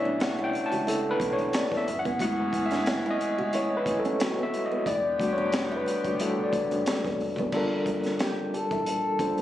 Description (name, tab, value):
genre	R&B, neo-soul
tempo	90 BPM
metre	4/4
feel	swing 55% on 16ths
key	unclear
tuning	A4 = 438 Hz
part	overdriven tine electric piano	accompaniment	0.0-9.4 s	G3 to A5	-26 LUFS	left 1 dB	medium tremolo
part	warm horn section	stabs	0.0-7.2 s	D3 to G#4	-35 LUFS	right 1 dB	none
part	deep dub fingered electric bass	bass	0.0-9.4 s	E1 to C#2	-42 LUFS	equal	none
part	nylon-string guitar	second line	0.1-9.4 s	Bb3 to F#4	-35 LUFS	right 5 dB	none
part	crunchy breakbeat drum kit	drums	0.2-9.4 s	crash cymbal, hi-hat, kick drum, snare drum	-32 LUFS	equal	none
part	breathy flugelhorn	melody	8.2-9.4 s	G4 to A4	-28 LUFS	left 1 dB	slapback echo
room	light reverb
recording	recorded on a phone in the room, club reverb, compression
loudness	-25 LUFS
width	side -12 dB against mid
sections	0.0-7.5 A section; 7.5-9.4 B section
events	tine electric piano solo 0.0-7.5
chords	0.0 Bm11; 1.9 F#m11; 4.9 Em11; 7.5 Gm9